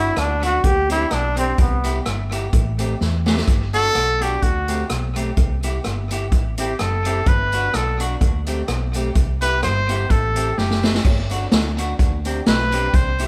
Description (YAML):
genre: ska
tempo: 127 BPM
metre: 4/4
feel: swing 55% on 8ths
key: G major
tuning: A4 = 439 Hz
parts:
  - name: brilliant trombone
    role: melody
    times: 0.0-2.0 s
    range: B3 to G4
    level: -22 LUFS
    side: equal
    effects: none
  - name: semi-hollow electric guitar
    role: accompaniment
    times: 0.0-13.3 s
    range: A3 to G4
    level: -30 LUFS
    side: equal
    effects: tape echo
  - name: hollow-body short-scale fingered electric bass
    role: bass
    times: 0.0-13.3 s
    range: F#1 to E2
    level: -26 LUFS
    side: equal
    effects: none
  - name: swinging big-band drum kit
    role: drums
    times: 0.2-13.3 s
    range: crash cymbal, hi-hat, kick drum, rim click, snare drum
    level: -22 LUFS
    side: equal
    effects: none
  - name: tambourine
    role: percussion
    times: 0.4-13.3 s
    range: none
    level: -45 LUFS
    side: equal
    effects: none
  - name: bright trumpet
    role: melody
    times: 3.7-13.3 s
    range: F#4 to C5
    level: -23 LUFS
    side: equal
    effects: none
room: moderate stone room reverb, RT60 1.0 s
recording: band playing live in one room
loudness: -20 LUFS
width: mono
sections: 0.0-3.5 A section; 3.5-13.3 A section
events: trombone solo 0.0-3.5; drum fill 3.0-3.5, 10.6-11.0; trumpet solo 3.5-13.3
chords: 0.0 Gmaj7; 0.6 D7sus4; 1.6 Cmaj7; 2.5 Am7; 3.5 Gmaj7; 4.4 D7sus4; 5.4 Cmaj7; 6.3 Am7; 7.3 Gmaj7; 8.2 D7sus4; 9.2 Cmaj7; 10.1 Am7; 11.0 Gmaj7; 12.0 D7sus4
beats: 0.16 0.64 1.11 | 1.58 2.06 2.53 3.00 | 3.48 3.95 4.42 4.90 | 5.37 5.84 6.32 6.79 | 7.27 7.74 8.21 8.69 | 9.16 9.63 10.10 10.58 | 11.05 11.52 11.99 12.47 | 12.94